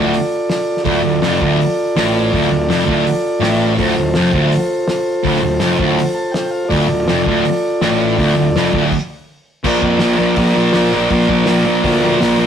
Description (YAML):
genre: garage rock duo or trio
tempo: 164 BPM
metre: 4/4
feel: straight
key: D minor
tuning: A4 = 444 Hz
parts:
  - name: combo organ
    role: sustained chords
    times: 0.0-12.5 s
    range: F4 to A5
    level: -18 LUFS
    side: equal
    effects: none
  - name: thick fuzz guitar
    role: riff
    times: 0.0-12.5 s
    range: D2 to Bb3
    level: -15 LUFS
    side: equal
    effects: distortion
  - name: fuzz picked electric bass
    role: bass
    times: 0.0-12.5 s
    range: D1 to F2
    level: -22 LUFS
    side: left 1 dB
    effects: overdrive
  - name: cloth-damped thuddy drum kit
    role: drums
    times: 0.1-12.3 s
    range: crash cymbal, hi-hat, kick drum, snare drum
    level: -24 LUFS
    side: left 1 dB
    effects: none
room: light reverb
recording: rough rehearsal-room recording, warm saturation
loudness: -13 LUFS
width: side -8 dB against mid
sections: 0.0-9.6 A section; 9.6-12.5 B section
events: transistor combo organ fill 6.0-6.7; stop 8.9-9.6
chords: 0.0 Dm; 9.6 Bb